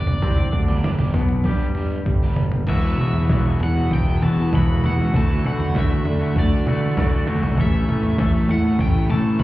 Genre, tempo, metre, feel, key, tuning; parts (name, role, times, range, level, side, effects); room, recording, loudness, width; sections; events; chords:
indie rock; 98 BPM; 4/4; straight; A4 = 440 Hz
cranked stack guitar; melody; 0.0-9.4 s; D5 to B5; -31 LUFS; equal; overdrive
twangy electric guitar; riff; 0.0-9.4 s; G2 to A4; -29 LUFS; left 5 dB; spring reverb
fuzz fingered electric bass; bass; 0.0-9.4 s; E1 to D3; -21 LUFS; equal; overdrive
dusty soul sampler-style drum kit; drums; 0.1-9.4 s; crash cymbal, kick drum, snare drum, toms; -22 LUFS; equal
crunchy overdriven guitar; riff; 0.2-9.4 s; E2 to G4; -26 LUFS; right 4 dB; wide subtle chorus, digital delay
little or no reverb; heard muffled through a wall, club reverb, EQ; -17 LUFS; side -16 dB against mid
0.0-2.7 A section; 2.7-9.4 B section
0.0 G; 2.7 Esus2; 5.1 Dadd9; 7.6 A